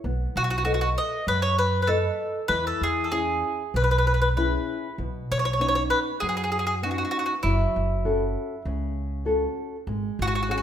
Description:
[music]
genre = italian folk, Italian serenade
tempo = 98 BPM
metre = 4/4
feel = straight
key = unclear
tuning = A4 = 440 Hz
[part]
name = nylon-string guitar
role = accompaniment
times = 0.0-10.6 s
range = B2 to D#5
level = -29 LUFS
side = left 2 dB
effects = none
[part]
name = upright bass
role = bass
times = 0.0-10.6 s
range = F#1 to F#2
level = -27 LUFS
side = right 1 dB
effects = none
[part]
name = bowl-back mandolin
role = melody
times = 0.4-10.6 s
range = E4 to D#5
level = -25 LUFS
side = equal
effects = none
[sound]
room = moderate recital hall reverb, RT60 1.4 s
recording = minimal, uncompressed stereo recording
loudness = -23 LUFS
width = side -9 dB against mid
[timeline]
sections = 0.0-10.6 A section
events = none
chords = 0.0 B7; 2.5 E6; 5.0 Badd9; 7.4 F#m; 9.9 G#7sus4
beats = | 0.05 0.66 1.27 1.89 | 2.50 3.12 3.74 4.36 | 4.99 5.61 6.22 6.83 | 7.45 8.05 8.66 9.27 | 9.88 10.49

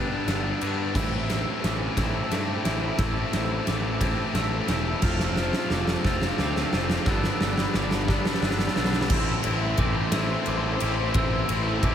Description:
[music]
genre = post-rock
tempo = 59 BPM (dotted quarters)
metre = 6/8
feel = straight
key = A minor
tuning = A4 = 440 Hz
[part]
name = warm studio string section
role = sustained chords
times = 0.0-11.9 s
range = D4 to C6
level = -37 LUFS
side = left 1 dB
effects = none
[part]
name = electric guitar through a small old amp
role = arpeggios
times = 0.0-11.9 s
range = A2 to C5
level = -35 LUFS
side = left 1 dB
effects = ensemble chorus, diffuse ambient delay
[part]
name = glockenspiel with soft plastic mallets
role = arpeggios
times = 0.0-11.9 s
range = D6 to F6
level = -36 LUFS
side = right 3 dB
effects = diffuse ambient delay
[part]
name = tight distorted guitar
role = riff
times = 0.0-11.9 s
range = G2 to F4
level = -28 LUFS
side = left 1 dB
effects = distortion
[part]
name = fuzz picked electric bass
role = bass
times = 0.0-11.9 s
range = E1 to G2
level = -29 LUFS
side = equal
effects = overdrive
[part]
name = big rock drum kit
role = drums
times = 0.3-11.9 s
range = crash cymbal, kick drum, ride cymbal, snare drum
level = -27 LUFS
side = equal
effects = none
[sound]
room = moderate huge ambient reverb, RT60 3.7 s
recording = dreamy mix soaked in reverb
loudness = -23 LUFS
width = side -9 dB against mid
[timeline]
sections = 0.0-9.1 A section; 9.1-11.9 B section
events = build-up 0.0-9.1; drum fill 0.0-9.1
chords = 0.0 G; 1.0 Am; 5.0 F; 7.1 G; 9.1 Am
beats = | 0.96 1.98 | 3.00 4.02 | 5.04 6.06 | 7.08 8.10 | 9.11 10.13 | 11.15

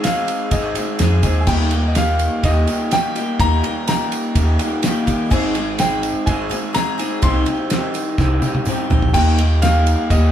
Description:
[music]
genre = folk rock and heartland rock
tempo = 125 BPM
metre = 4/4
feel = straight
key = unclear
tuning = A4 = 442 Hz
[part]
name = clear concert grand piano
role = melody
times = 0.0-10.3 s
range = Eb5 to C6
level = -23 LUFS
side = left 1 dB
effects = none
[part]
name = picked twelve-string acoustic guitar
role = accompaniment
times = 0.0-10.3 s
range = Ab2 to Ab4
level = -24 LUFS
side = left 3 dB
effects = none
[part]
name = electric guitar through a small old amp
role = riff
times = 0.0-10.3 s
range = Ab2 to Ab4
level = -23 LUFS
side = right 1 dB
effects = none
[part]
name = damped 70s drum kit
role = drums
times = 0.0-10.2 s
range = crash cymbal, kick drum, ride cymbal, snare drum, toms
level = -22 LUFS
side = right 1 dB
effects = none
[part]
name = tambourine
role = percussion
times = 0.0-10.2 s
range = none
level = -36 LUFS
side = right 6 dB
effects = none
[part]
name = picked electric bass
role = bass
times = 0.5-10.3 s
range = Ab1 to Eb3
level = -18 LUFS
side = equal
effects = none
[sound]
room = moderate studio reverb, RT60 0.6 s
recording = band playing live in one room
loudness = -15 LUFS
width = side -10 dB against mid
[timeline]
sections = 0.0-9.1 A section; 9.1-10.3 A section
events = drum fill 8.2-9.1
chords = 0.0 Ab; 1.5 Eb; 5.3 Ab; 7.2 Cm; 9.1 Eb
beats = 0.04 0.52 1.00 | 1.48 1.96 2.44 2.92 | 3.40 3.88 4.36 4.84 | 5.31 5.79 6.27 6.75 | 7.23 7.71 8.19 8.67 | 9.15 9.62 10.10

